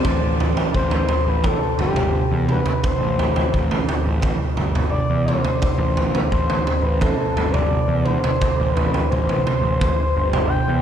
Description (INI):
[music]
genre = psychedelic rock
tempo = 86 BPM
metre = 4/4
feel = straight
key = A minor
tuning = A4 = 439 Hz
[part]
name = expressive portamento lead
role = melody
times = 0.0-10.8 s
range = G4 to G5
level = -23 LUFS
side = left 2 dB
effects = chorus, tape echo
[part]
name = raw garage drum kit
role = drums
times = 0.0-10.5 s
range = kick drum, toms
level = -19 LUFS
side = right 1 dB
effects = none
[part]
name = fuzz picked electric bass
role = bass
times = 0.1-10.8 s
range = G1 to E2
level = -24 LUFS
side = equal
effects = overdrive
[sound]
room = moderate huge ambient reverb, RT60 7.3 s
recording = dreamy mix soaked in reverb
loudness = -17 LUFS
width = side -9 dB against mid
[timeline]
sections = 0.0-10.8 A section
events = none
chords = 0.0 Am7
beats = | 0.04 0.73 1.43 2.13 | 2.83 3.53 4.23 4.93 | 5.63 6.32 7.02 7.72 | 8.42 9.12 9.81 10.51